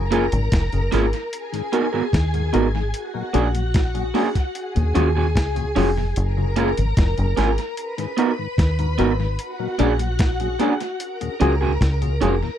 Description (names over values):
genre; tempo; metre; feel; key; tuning
lovers rock reggae; 74 BPM; 4/4; straight; F# major; A4 = 440 Hz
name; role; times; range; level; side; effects
soft string machine; second line; 0.0-12.6 s; F#4 to B5; -28 LUFS; left 1 dB; ensemble chorus
deep dub fingered electric bass; bass; 0.0-12.4 s; E#1 to D#2; -21 LUFS; equal; none
mellow tine electric piano; accompaniment; 0.1-12.3 s; B3 to A#4; -26 LUFS; left 2 dB; medium stereo tremolo, tape echo
mellow tonewheel organ; accompaniment; 0.1-12.5 s; D#2 to F#4; -28 LUFS; left 8 dB; slow rotary speaker
electric guitar through a small old amp; stabs; 0.1-12.3 s; A#3 to A#4; -21 LUFS; right 6 dB; none
dusty soul sampler-style drum kit; drums; 0.1-12.4 s; hi-hat, kick drum, snare drum; -23 LUFS; equal; tape echo
room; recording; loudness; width
little or no reverb; dry, close 1970s-style studio recording; -18 LUFS; side -10 dB against mid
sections
0.0-12.6 A section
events
none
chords
0.0 F#maj9; 1.3 G#m9; 2.9 A#7alt; 4.6 D#m11; 6.2 F#maj9; 7.8 G#m9; 9.4 A#7alt; 11.0 D#m11